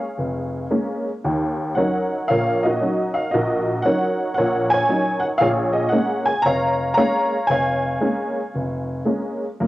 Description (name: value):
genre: solo jazz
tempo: 115 BPM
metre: 4/4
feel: swing 68% on 8ths, rubato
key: Bb minor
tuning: A4 = 439 Hz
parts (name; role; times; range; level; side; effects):
- honky-tonk upright piano; solo; 0.0-9.7 s; F1 to Bb5; -18 LUFS; equal; none
room: light reverb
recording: home recording on cassette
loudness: -18 LUFS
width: side -16 dB against mid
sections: 0.0-9.7 A section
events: none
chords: 0.0 Bbm7; 1.2 Ebm7; 5.4 Bbm7